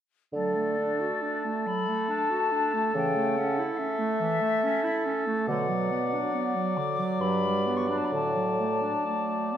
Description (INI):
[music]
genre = classical, slow romantic movement for wind quintet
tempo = 69 BPM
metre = 3/4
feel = uneven beats, rubato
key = D major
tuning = A4 = 440 Hz
[part]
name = silver concert flute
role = melody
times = 0.3-9.6 s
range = D5 to D6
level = -31 LUFS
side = left 5 dB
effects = none
[part]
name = warm oboe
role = second line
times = 0.3-9.6 s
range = A4 to D5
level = -32 LUFS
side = left 2 dB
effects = none
[part]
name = bright clarinet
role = accompaniment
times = 0.3-9.6 s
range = D3 to F#4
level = -31 LUFS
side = right 6 dB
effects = none
[part]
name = clear French horn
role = accompaniment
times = 0.3-9.6 s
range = F#3 to A3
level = -32 LUFS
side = left 1 dB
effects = none
[part]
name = mellow bassoon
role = bass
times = 0.3-8.9 s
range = G2 to D3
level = -31 LUFS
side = right 2 dB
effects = none
[sound]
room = wet recital hall reverb, RT60 1.7 s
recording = none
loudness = -25 LUFS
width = side -10 dB against mid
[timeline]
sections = 0.3-9.6 A section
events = none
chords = 0.3 D; 3.0 A/C#; 5.5 Bm; 7.2 Gmaj7; 8.1 D/A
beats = | 0.34 1.22 2.10 | 2.95 3.79 4.63 | 5.47 6.32 7.20 | 8.11 9.06